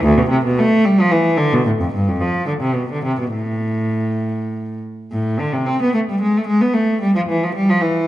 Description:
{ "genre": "classical, baroque-style suite movement for unaccompanied cello", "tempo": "98-113 BPM", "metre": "3/4", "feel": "rubato", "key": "A minor", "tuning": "A4 = 442 Hz", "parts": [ { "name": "rich cello", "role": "solo", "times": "0.0-8.1 s", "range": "D2 to C4", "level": "-15 LUFS", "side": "equal", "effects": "none" } ], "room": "moderate recital hall reverb, RT60 1.6 s", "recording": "nothing above 10.9 kHz", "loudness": "-15 LUFS", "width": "side -14 dB against mid", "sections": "0.0-5.1 A section; 5.1-8.1 B section", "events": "none", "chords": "none" }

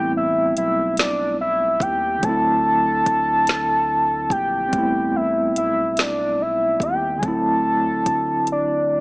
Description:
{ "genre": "slow six-eight R&B", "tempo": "48 BPM (dotted quarters)", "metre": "6/8", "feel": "straight", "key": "A minor", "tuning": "A4 = 440 Hz", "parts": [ { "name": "soft octave-layered synth lead", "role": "melody", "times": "0.0-9.0 s", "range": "D5 to A5", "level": "-19 LUFS", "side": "equal", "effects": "chorus" }, { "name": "tine electric piano", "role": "accompaniment", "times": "0.0-9.0 s", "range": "D3 to E4", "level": "-24 LUFS", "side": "equal", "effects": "medium tremolo" }, { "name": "smooth synth bass", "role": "bass", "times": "0.0-9.0 s", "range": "A1 to D#2", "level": "-32 LUFS", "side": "equal", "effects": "none" }, { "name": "smooth R&B drum kit", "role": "drums", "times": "0.6-8.7 s", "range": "hi-hat, kick drum, snare drum", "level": "-23 LUFS", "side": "equal", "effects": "none" } ], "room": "light reverb, digital ambience", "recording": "small speaker sound", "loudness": "-17 LUFS", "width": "side -26 dB against mid", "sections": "0.0-9.0 A section", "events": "drum fill 8.5-9.0", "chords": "0.0 Am9; 2.2 D7; 4.7 Am9; 7.2 D7" }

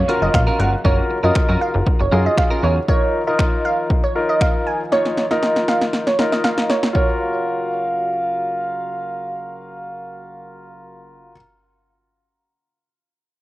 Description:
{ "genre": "dance-pop", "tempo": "118 BPM", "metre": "4/4", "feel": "straight", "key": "F# major", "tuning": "A4 = 442 Hz", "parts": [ { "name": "glassy wavetable pluck", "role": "melody", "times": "0.0-8.4 s", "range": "C#5 to G#5", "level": "-21 LUFS", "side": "right 2 dB", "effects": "chorus, cassette tape, tape echo" }, { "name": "mellow brass ensemble", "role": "sustained chords", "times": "0.0-11.3 s", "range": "C#3 to E#5", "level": "-28 LUFS", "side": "equal", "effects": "sidechain pumping, cassette tape" }, { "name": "plucky analog bass", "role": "bass", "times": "0.0-2.8 s", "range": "F#1 to F#2", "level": "-18 LUFS", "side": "equal", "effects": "sidechain pumping" }, { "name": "downlifter", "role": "sound effects", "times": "0.0-2.9 s", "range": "none", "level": "-38 LUFS", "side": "left 1 dB", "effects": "none" }, { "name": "warm concert grand piano", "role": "accompaniment", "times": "0.1-11.4 s", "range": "D#4 to C#5", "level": "-23 LUFS", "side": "left 2 dB", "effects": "sidechain pumping, cassette tape" }, { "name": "clean electric guitar", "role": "riff", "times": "0.1-2.8 s", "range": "C#4 to A#4", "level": "-26 LUFS", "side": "right 3 dB", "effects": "analog chorus, cassette tape" }, { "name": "punchy analog drum machine", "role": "drums", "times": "0.1-7.1 s", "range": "finger snaps, hi-hat, kick drum, snare drum", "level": "-19 LUFS", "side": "equal", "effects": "none" } ], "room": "moderate spring reverb, RT60 2.8 s", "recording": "home recording on cassette", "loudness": "-16 LUFS", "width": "side -17 dB against mid", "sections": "0.0-7.0 A section; 7.0-11.0 B section", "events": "drum fill 4.9-7.0", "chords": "0.0 F#maj7; 2.9 D#sus2; 7.0 F#maj7" }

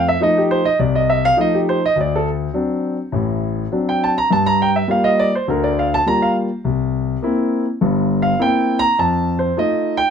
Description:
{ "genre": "solo jazz", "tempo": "103 BPM", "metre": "4/4", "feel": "swing 68% on 8ths", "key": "F mixolydian", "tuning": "A4 = 440 Hz", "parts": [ { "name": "warm grand piano", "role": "solo", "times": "0.0-10.1 s", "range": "G1 to Bb5", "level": "-15 LUFS", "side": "equal", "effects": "none" } ], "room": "moderate studio reverb, RT60 0.7 s", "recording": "none", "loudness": "-15 LUFS", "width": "side -7 dB against mid", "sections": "0.0-10.1 A section", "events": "grand piano solo 0.0-10.1", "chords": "0.0 F7; 2.0 D7; 4.3 Gm7; 6.6 C7; 9.0 F7" }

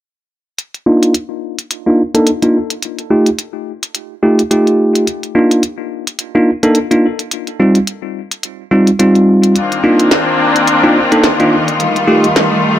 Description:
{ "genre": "glitch hop", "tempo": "107 BPM", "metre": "4/4", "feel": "swing 57% on 16ths", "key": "unclear", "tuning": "A4 = 444 Hz", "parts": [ { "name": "glitchy drum kit", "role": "drums", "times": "0.6-12.5 s", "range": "hi-hat, snare drum", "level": "-17 LUFS", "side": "equal", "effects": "none" }, { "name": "bell-like tine electric piano", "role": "stabs", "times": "0.9-12.3 s", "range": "G3 to A4", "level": "-11 LUFS", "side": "equal", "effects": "low-pass filter, ping-pong delay" }, { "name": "bright symphonic string section", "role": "sustained chords", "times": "9.6-12.8 s", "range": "Eb3 to F4", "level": "-12 LUFS", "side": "left 1 dB", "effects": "vintage 12-bit sampler grit" } ], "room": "moderate studio reverb, RT60 0.6 s", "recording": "none", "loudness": "-10 LUFS", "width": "side -12 dB against mid", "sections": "0.6-12.8 A section", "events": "filter sweep on tine electric piano 0.6-12.8", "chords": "0.6 Bbadd11; 2.8 F9; 5.1 Bbadd11; 7.3 Eb69; 9.6 Cm11; 11.8 F9" }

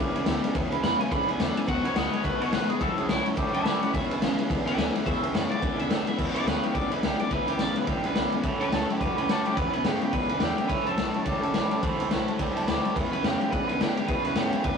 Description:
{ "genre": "rockabilly", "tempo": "213 BPM", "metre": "4/4", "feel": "swing 59% on 8ths", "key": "E mixolydian", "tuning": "A4 = 440 Hz", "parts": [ { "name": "picked steel-string acoustic guitar", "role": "accompaniment", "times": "0.0-14.8 s", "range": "A2 to A4", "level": "-32 LUFS", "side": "equal", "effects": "none" }, { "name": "tack piano", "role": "accompaniment", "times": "0.0-14.7 s", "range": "B4 to B5", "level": "-37 LUFS", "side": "right 3 dB", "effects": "none" }, { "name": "twangy electric guitar", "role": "riff", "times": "0.0-14.8 s", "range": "E2 to A3", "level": "-32 LUFS", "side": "right 2 dB", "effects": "none" }, { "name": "upright bass", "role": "bass", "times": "0.0-14.8 s", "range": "E1 to B2", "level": "-37 LUFS", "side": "equal", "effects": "none" }, { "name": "raw garage drum kit", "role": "drums", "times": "0.2-14.7 s", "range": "crash cymbal, kick drum, ride cymbal, snare drum", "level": "-27 LUFS", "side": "left 2 dB", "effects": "none" }, { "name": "electric guitar at the edge of break-up", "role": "melody", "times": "0.8-14.8 s", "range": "E4 to B5", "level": "-30 LUFS", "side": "right 1 dB", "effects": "none" } ], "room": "moderate studio reverb, RT60 0.5 s", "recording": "rough rehearsal-room recording, warm saturation, small room ambience", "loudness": "-24 LUFS", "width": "side -6 dB against mid", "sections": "0.0-6.2 A section; 6.2-14.8 B section", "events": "clean electric guitar solo 0.0-6.2", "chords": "0.0 E6; 1.7 B6; 2.8 A6; 3.9 E6; 8.4 A6; 9.6 E6; 10.7 A6; 11.8 Am7; 13.0 E6" }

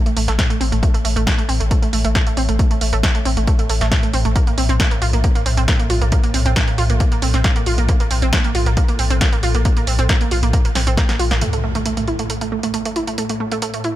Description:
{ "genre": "driving peak-time techno", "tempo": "136 BPM", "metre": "4/4", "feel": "straight", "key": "unclear", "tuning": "A4 = 441 Hz", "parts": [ { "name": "swarming drone", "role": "drone", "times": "0.1-14.0 s", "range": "A2", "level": "-26 LUFS", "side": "equal", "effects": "built-in reverb, sidechain pumping" }, { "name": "analog pluck", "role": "riff", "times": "0.1-13.9 s", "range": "A3 to F4", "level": "-22 LUFS", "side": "right 3 dB", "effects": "chorus, sidechain pumping, dub echo" }, { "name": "punchy analog drum machine", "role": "drums", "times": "0.1-13.9 s", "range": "hi-hat, snare drum", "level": "-24 LUFS", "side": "right 1 dB", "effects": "none" }, { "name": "saturated sub bass", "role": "bass", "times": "0.2-11.4 s", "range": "A1 to Bb1", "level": "-18 LUFS", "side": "left 1 dB", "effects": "tube saturation, sidechain pumping, low-pass filter" }, { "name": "electronic kick drum", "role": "drums", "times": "0.4-11.1 s", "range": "none", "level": "-17 LUFS", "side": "equal", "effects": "none" }, { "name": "impact", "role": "sound effects", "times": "11.4-13.2 s", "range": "none", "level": "-27 LUFS", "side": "left 1 dB", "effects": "none" } ], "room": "little or no reverb", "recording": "none", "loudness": "-15 LUFS", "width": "side -14 dB against mid", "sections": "0.0-11.4 A section; 11.4-14.0 B section", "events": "drum fill 10.8-11.4; impact 11.4-13.2", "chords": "0.0 N.C.; 4.4 Bb5; 11.4 A5" }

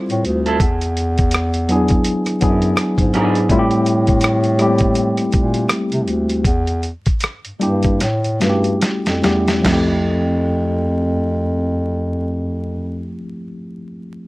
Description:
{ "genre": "R&B, neo-soul", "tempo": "70-83 BPM", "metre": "4/4", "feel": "swing 58% on 16ths", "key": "F major", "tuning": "A4 = 441 Hz", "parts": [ { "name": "tine electric piano", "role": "accompaniment", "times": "0.0-14.3 s", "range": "F3 to C5", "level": "-18 LUFS", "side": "left 1 dB", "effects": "medium stereo tremolo" }, { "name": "mellow bass clarinet", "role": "bass", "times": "0.1-13.2 s", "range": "D2 to C3", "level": "-19 LUFS", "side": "equal", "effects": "none" }, { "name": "dusty soul sampler-style drum kit", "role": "drums", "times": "0.1-9.9 s", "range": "crash cymbal, hi-hat, kick drum, rim click, snare drum, toms", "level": "-19 LUFS", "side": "equal", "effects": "none" }, { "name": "electric guitar through a small old amp", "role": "second line", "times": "0.5-3.4 s", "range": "C4 to B4", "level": "-23 LUFS", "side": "right 5 dB", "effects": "spring reverb" } ], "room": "light reverb", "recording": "vinyl crackle, lossy compression artefacts", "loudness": "-15 LUFS", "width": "side -20 dB against mid", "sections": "0.0-9.6 A section; 9.6-13.1 B section", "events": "slowing down 3.5-9.6; drum fill 8.0-9.6", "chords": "0.0 Fmaj7; 0.6 E7; 3.5 Am7; 6.4 Em7b5; 8.0 A7; 9.6 Fmaj7" }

